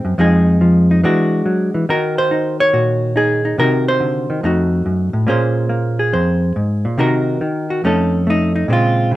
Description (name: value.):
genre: solo jazz.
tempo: 141 BPM.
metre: 4/4.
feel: swing 68% on 8ths.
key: unclear.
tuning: A4 = 441 Hz.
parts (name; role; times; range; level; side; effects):
hollow-body jazz guitar; solo; 0.0-9.2 s; F2 to Db5; -14 LUFS; equal; none.
room: moderate studio ambience, RT60 0.5 s.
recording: minimal, uncompressed stereo recording.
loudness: -14 LUFS.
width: side -16 dB against mid.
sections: 0.0-8.7 A section.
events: none.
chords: 0.2 Fm7; 1.0 E9; 1.9 Ebm7; 3.6 Cdim; 4.4 F7b9; 5.3 Bbm9; 7.0 Cm7b5; 7.8 F7b13.